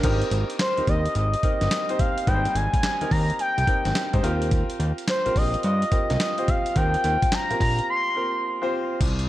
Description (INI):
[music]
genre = R&B, new jack swing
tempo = 107 BPM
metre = 4/4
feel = swing 65% on 16ths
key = unclear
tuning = A4 = 439 Hz
[part]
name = clear baby grand piano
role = accompaniment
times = 0.0-9.0 s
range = G3 to C5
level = -29 LUFS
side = left 1 dB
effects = none
[part]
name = fat analog bass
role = bass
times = 0.0-9.3 s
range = G1 to Ab2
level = -24 LUFS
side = equal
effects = none
[part]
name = dusty soul sampler-style drum kit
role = drums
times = 0.0-9.3 s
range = crash cymbal, handclaps, hi-hat, kick drum, snare drum, tambourine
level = -25 LUFS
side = equal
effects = none
[part]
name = expressive portamento lead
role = melody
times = 0.6-8.7 s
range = C5 to C6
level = -25 LUFS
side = equal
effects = chorus, tape echo
[sound]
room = light reverb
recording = dark, warm production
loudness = -21 LUFS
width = side -14 dB against mid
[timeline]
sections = 0.0-9.0 A section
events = break 7.9-9.0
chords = 0.0 Abmaj9; 4.2 Eb6